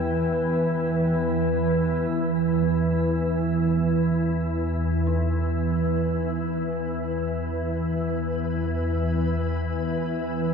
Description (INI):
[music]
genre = dark ambient drone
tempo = free time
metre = none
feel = none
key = E harmonic minor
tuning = A4 = 440 Hz
[part]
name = dark analog pad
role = sustained chords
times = 0.0-10.5 s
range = E3 to G5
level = -30 LUFS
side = right 1 dB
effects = chorus, shimmer reverb
[part]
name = organ-like drone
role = drone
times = 0.0-10.5 s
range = E2 to E3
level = -23 LUFS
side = equal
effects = ensemble chorus, built-in reverb
[part]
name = flickering grainy texture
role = texture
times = 3.2-10.5 s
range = B4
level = -42 LUFS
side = right 1 dB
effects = built-in reverb, analog chorus, shimmer reverb
[part]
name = dark detuned synth bell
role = arpeggios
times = 5.1-10.5 s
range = D#4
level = -47 LUFS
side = right 1 dB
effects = none
[sound]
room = wet huge ambient reverb, RT60 8.0 s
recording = dreamy mix soaked in reverb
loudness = -22 LUFS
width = side -6 dB against mid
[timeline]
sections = 0.0-2.1 A section; 2.1-10.5 B section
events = fade-in on synth texture 2.1-10.5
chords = 0.0 E5